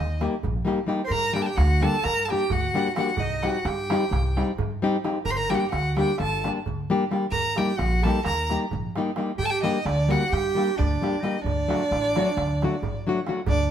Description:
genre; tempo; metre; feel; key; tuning
balkan folk, Balkan wedding band; 261 BPM (eighths); 9/8; straight; unclear; A4 = 439 Hz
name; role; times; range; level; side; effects
clear violin; melody; 0.0-13.7 s; D5 to C6; -28 LUFS; right 1 dB; none
warm clarinet; second line; 0.0-13.7 s; D4 to C5; -30 LUFS; right 4 dB; none
upright bass; bass; 0.0-13.7 s; G1 to G2; -26 LUFS; equal; none
darbuka; percussion; 0.1-13.7 s; none; -33 LUFS; right 3 dB; none
nylon-string guitar; accompaniment; 0.2-13.4 s; F#3 to G4; -26 LUFS; left 3 dB; none
room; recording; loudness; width
moderate stone room reverb, RT60 1.0 s; band playing live in one room; -22 LUFS; side -9 dB against mid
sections
0.0-13.5 A section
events
none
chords
0.0 Eb; 1.1 Gm; 3.2 Cm; 5.3 Gm; 7.3 Eb; 9.4 Gm; 11.4 D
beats
0.17 0.40 0.63 0.86 | 1.09 1.33 1.56 1.79 2.02 2.25 2.48 2.71 2.95 | 3.18 3.41 3.64 3.87 4.11 4.34 4.57 4.80 5.03 | 5.26 5.49 5.72 5.96 6.19 6.42 6.65 6.88 7.11 | 7.34 7.57 7.80 8.03 8.26 8.48 8.71 8.94 9.17 | 9.40 9.63 9.86 10.08 10.31 10.54 10.77 10.99 11.22 | 11.45 11.67 11.90 12.12 12.35 12.58 12.80 13.03 13.25 | 13.48 13.70

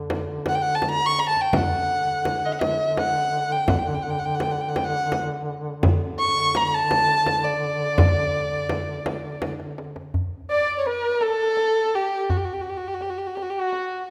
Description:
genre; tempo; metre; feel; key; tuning
Persian modal ensemble; 56 BPM (dotted quarters); 6/8; straight; D dastgah chahargah; A4 = 440 Hz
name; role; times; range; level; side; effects
mellow duduk; drone; 0.0-10.2 s; D3; -33 LUFS; equal; none
frame drum; percussion; 0.1-9.6 s; none; -29 LUFS; equal; none
dark violin; melody; 0.5-14.1 s; F#4 to C#6; -25 LUFS; equal; none
tombak; percussion; 0.5-13.9 s; none; -30 LUFS; equal; none
bright trumpet; second line; 10.5-14.0 s; F#4 to D5; -31 LUFS; equal; none
room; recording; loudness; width
moderate scoring stage reverb, RT60 2.0 s; none; -23 LUFS; mono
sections
0.0-10.1 A section; 10.1-14.1 B section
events
drum fill 0.8-1.5, 9.4-10.1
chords
none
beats
0.47 | 1.54 2.62 | 3.70 4.77 | 5.85 6.92 | 8.00 9.07 | 10.14 11.22 | 12.29 13.36

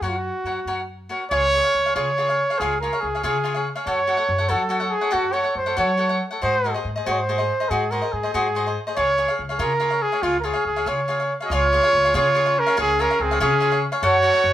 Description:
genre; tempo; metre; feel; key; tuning
mexican folk, mariachi; 95 BPM (dotted quarters); 6/8; rubato; Db major; A4 = 444 Hz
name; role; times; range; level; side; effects
warm trumpet; melody; 0.0-14.5 s; E#4 to Eb5; -20 LUFS; right 1 dB; none
cavaquinho; accompaniment; 0.0-14.5 s; F4 to F#5; -25 LUFS; left 2 dB; none
upright bass; bass; 0.0-14.5 s; Db2 to Gb3; -29 LUFS; equal; none
clear trumpet; second line; 11.4-14.5 s; C4 to Gb4; -28 LUFS; right 4 dB; none
room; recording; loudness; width
moderate studio reverb, RT60 0.9 s; band playing live in one room; -19 LUFS; side -12 dB against mid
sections
0.0-1.3 A section; 1.3-11.5 B section; 11.5-14.5 B section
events
none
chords
0.0 F#; 1.3 Db; 3.9 Gbm; 6.4 Ab7; 9.0 Db; 14.0 Gbm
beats
| 0.03 0.67 | 1.32 1.97 | 2.60 3.23 | 3.86 4.49 | 5.12 5.77 | 6.42 7.06 | 7.71 8.34 | 8.97 9.59 | 10.22 10.86 | 11.51 12.14 | 12.77 13.40 | 14.03

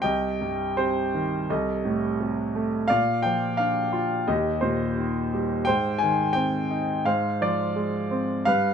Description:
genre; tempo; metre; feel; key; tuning
classical, lyrical solo piano; 86 BPM; 4/4; rubato; C minor; A4 = 440 Hz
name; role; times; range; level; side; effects
clear concert grand piano; solo; 0.0-8.7 s; C2 to Ab5; -22 LUFS; equal; none
room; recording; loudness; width
light reverb; none; -22 LUFS; side -7 dB against mid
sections
0.0-8.7 A section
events
none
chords
0.0 Cm; 1.5 Cm6; 2.9 Bb; 4.3 Eb; 5.7 Ab; 7.0 Fm/Ab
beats
| 0.03 0.77 1.48 2.19 | 2.89 3.58 4.27 4.97 | 5.66 6.35 7.04 7.75 | 8.46

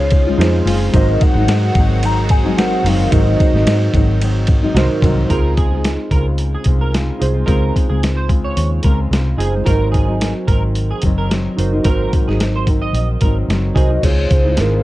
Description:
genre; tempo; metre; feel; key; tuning
indie pop, bedroom pop; 110 BPM; 4/4; swing 55% on 16ths; Db major; A4 = 440 Hz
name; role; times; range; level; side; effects
warbly nostalgic lead; melody; 0.0-4.2, 13.8-14.8 s; Bb4 to Bb5; -22 LUFS; left 1 dB; lush chorus, tape echo
nylon-string guitar; accompaniment; 0.0-14.8 s; Ab2 to F4; -22 LUFS; left 3 dB; lush chorus, warbly pitch drift
warbly lo-fi synth keys; accompaniment; 0.0-14.8 s; Eb4 to C5; -23 LUFS; right 4 dB; chorus, cassette tape
lush unison pad; sustained chords; 0.0-5.3, 14.0-14.8 s; Db3 to Gb4; -27 LUFS; right 1 dB; chorus
vintage muted fingered electric bass; bass; 0.0-14.8 s; Gb1 to Ab2; -17 LUFS; equal; none
boom bap sampler-style drum kit; drums; 0.1-14.7 s; crash cymbal, hi-hat, kick drum, ride cymbal, snare drum; -17 LUFS; equal; none
electric guitar at the edge of break-up; second line; 5.3-13.9 s; Ab4 to Eb5; -26 LUFS; right 4 dB; ensemble chorus, tape echo
room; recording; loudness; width
little or no reverb; dark, warm production; -13 LUFS; side -16 dB against mid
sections
0.0-5.3 A section; 5.3-14.0 B section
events
none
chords
0.0 Dbmaj7; 0.9 Ab7; 5.3 Dbmaj7; 9.7 Ab7; 14.0 Dbmaj7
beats
0.39 | 0.94 1.48 2.03 2.57 | 3.12 3.66 4.21 4.75 | 5.30 5.84 6.39 6.94 | 7.48 8.03 8.57 9.12 | 9.67 10.21 10.76 11.30 | 11.85 12.39 12.94 13.49 | 14.03 14.58

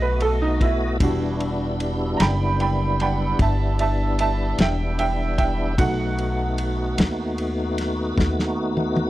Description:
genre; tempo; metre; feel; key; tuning
slow blues; 50 BPM (dotted quarters); 12/8; straight; E minor; A4 = 440 Hz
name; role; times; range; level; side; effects
clear upright piano; accompaniment; 0.0-8.1 s; G3 to B5; -25 LUFS; right 5 dB; none
tonewheel organ; sustained chords; 0.0-9.1 s; G3 to D#5; -26 LUFS; left 1 dB; overdrive, chorus vibrato, slow rotary speaker
upright bass; bass; 0.0-9.1 s; E1 to D#2; -24 LUFS; left 1 dB; none
warm soul drum kit; drums; 0.2-9.1 s; kick drum, ride cymbal, snare drum, toms; -22 LUFS; left 1 dB; none
room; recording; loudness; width
small room ambience; dry, close 1970s-style studio recording; -20 LUFS; side -15 dB against mid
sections
0.0-9.1 A section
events
upright piano solo 0.0-9.1; drum fill 8.2-9.1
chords
0.0 B7; 1.0 Em7; 5.8 B7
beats
| 1.01 2.20 3.40 4.59 | 5.79 6.98 8.18

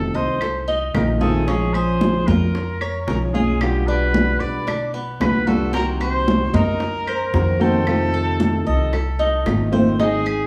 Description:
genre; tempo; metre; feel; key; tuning
latin, Cuban son and guajira; 113 BPM; 4/4; straight; unclear; A4 = 441 Hz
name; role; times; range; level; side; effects
warm trumpet; melody; 0.0-10.5 s; G4 to D5; -28 LUFS; equal; none
flamenco guitar; accompaniment; 0.0-10.5 s; B2 to Ab4; -26 LUFS; equal; none
Cuban tres; arpeggios; 0.0-10.5 s; B3 to Eb5; -28 LUFS; equal; none
upright bass; bass; 0.0-10.5 s; Ab1 to B2; -26 LUFS; equal; none
bongos; percussion; 0.2-10.3 s; none; -34 LUFS; equal; none
congas; percussion; 0.2-10.5 s; none; -25 LUFS; equal; none
claves; percussion; 0.4-10.5 s; none; -35 LUFS; equal; none
room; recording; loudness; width
wet large studio reverb, RT60 1.2 s; band playing live in one room, small room ambience; -20 LUFS; mono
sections
0.0-10.0 A section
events
none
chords
0.0 F7; 1.5 Bbm7; 3.6 G7/B; 5.7 Cm7b5; 7.9 F7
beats
0.42 0.95 | 1.48 2.01 2.54 3.08 | 3.61 4.14 4.67 5.21 | 5.74 6.27 6.80 7.34 | 7.87 8.40 8.93 9.46 | 9.99

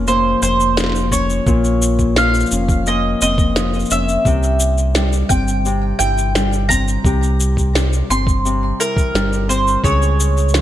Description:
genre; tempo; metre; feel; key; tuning
folktronica; 86 BPM; 4/4; straight; unclear; A4 = 441 Hz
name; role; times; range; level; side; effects
Celtic harp; arpeggios; 0.0-10.6 s; Bb2 to Ab4; -20 LUFS; left 3 dB; digital delay
round analog bass; bass; 0.0-10.6 s; F1 to Db2; -18 LUFS; equal; none
mandolin; melody; 0.1-10.6 s; Bb4 to C6; -20 LUFS; right 1 dB; vintage 12-bit sampler grit, digital delay
electronic cabasa and snare drum; drums; 0.1-10.6 s; none; -22 LUFS; equal; none
electronic kick drum; drums; 1.1-10.0 s; none; -18 LUFS; equal; none
room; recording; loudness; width
digital ambience; none; -14 LUFS; side -12 dB against mid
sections
0.0-10.6 A section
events
none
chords
0.0 Bbmadd9; 4.3 C; 9.8 Db5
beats
0.07 0.77 | 1.47 2.17 2.87 3.56 | 4.26 4.96 5.66 6.35 | 7.05 7.75 8.45 9.14 | 9.84 10.54

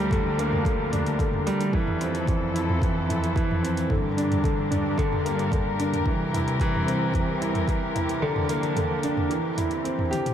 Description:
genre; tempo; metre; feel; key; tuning
piano and strings electronica; 111 BPM; 4/4; straight; F major; A4 = 439 Hz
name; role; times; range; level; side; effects
muted chamber string section; sustained chords; 0.0-10.3 s; E3 to Bb4; -31 LUFS; left 2 dB; sidechain pumping
warm grand piano; riff; 0.0-10.3 s; D3 to G4; -26 LUFS; right 1 dB; tape echo
warm studio cello section; bass; 0.0-8.2 s; C2 to G2; -30 LUFS; left 1 dB; sidechain pumping
deep house drum kit; drums; 0.1-10.3 s; hi-hat, toms; -32 LUFS; right 1 dB; small room ambience
electronic kick drum; drums; 0.1-7.8 s; none; -26 LUFS; equal; small room ambience
room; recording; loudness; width
moderate cathedral reverb, RT60 6.4 s; dreamy mix soaked in reverb; -22 LUFS; side -9 dB against mid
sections
0.0-10.3 A section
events
drum fill 10.1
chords
0.0 Bb6/D; 1.7 Fmaj7; 3.9 Gm; 6.1 C7; 8.2 Bb6/D; 9.3 C7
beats
0.12 0.66 1.20 | 1.74 2.28 2.82 3.36 | 3.90 4.44 4.98 5.52 | 6.06 6.60 7.14 7.68 | 8.22 8.76 9.30 9.85

